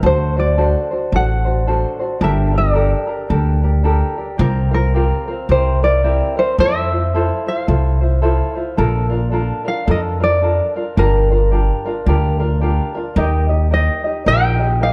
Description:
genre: Hawaiian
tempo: 109 BPM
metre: 4/4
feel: swing 60% on 8ths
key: F major, Bb major from 8.8 s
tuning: A4 = 440 Hz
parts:
  - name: tenor ukulele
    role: accompaniment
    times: 0.0-14.9 s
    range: C4 to Eb5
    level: -24 LUFS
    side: equal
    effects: none
  - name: upright bass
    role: bass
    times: 0.0-14.9 s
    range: G1 to F2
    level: -19 LUFS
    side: equal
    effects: none
  - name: tenor ukulele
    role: melody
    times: 0.1-14.9 s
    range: Bb4 to G5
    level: -21 LUFS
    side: equal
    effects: none
room: light reverb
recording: dark, warm production, lossy compression artefacts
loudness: -17 LUFS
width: mono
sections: 0.0-8.8 A section; 8.8-14.9 B section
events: none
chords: 0.0 D7; 2.2 Gmadd9; 4.4 C7sus4; 5.5 C7; 6.6 Fmaj7; 8.8 Bbmaj7; 11.0 Gm7; 13.2 Eb

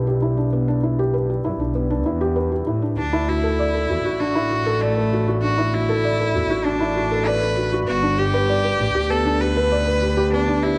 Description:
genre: piano and strings electronica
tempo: 98 BPM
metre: 4/4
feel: straight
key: D major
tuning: A4 = 440 Hz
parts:
  - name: felt-muted upright piano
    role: riff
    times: 0.0-10.8 s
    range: B3 to D5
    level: -24 LUFS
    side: equal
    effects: delay
  - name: clear chamber double bass section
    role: bass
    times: 0.0-10.8 s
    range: G1 to A2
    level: -26 LUFS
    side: equal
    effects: none
  - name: clear cello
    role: melody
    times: 3.0-10.8 s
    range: A3 to B4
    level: -26 LUFS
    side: equal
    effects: none
room: moderate scoring stage reverb, RT60 1.6 s, small room ambience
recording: nothing above 10.6 kHz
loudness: -21 LUFS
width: mono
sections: 0.0-10.8 A section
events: none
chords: 0.0 Em7; 3.0 Dadd9; 7.9 G

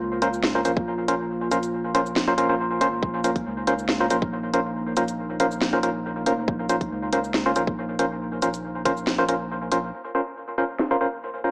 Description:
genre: deep dubstep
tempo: 139 BPM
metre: 4/4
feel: swing 53% on 16ths, half-time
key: Bb minor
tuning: A4 = 441 Hz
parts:
  - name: dark analog pad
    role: sustained chords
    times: 0.0-11.5 s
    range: Bb3 to F4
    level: -30 LUFS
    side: equal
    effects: chorus
  - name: soft dub sub bass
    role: bass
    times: 0.0-9.9 s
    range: F1 to Db2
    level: -34 LUFS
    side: equal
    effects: none
  - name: percussive organ stab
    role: stabs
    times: 0.2-11.5 s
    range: Db4 to C5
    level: -23 LUFS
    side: equal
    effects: chorus, dub echo
  - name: garage drum kit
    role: drums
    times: 0.2-10.9 s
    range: hi-hat, shaker, snare drum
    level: -26 LUFS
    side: equal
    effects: low-pass filter on cymbals, low-pass filter on hats, low-pass filter on perc, low-pass filter on snare
  - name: electronic kick drum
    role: drums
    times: 0.8-8.9 s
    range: none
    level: -26 LUFS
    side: equal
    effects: none
room: wet spring reverb, RT60 1.2 s, digital ambience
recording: small speaker sound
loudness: -21 LUFS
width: side -40 dB against mid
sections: 0.0-9.9 A section; 9.9-11.5 B section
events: none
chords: 0.0 Bbmadd9

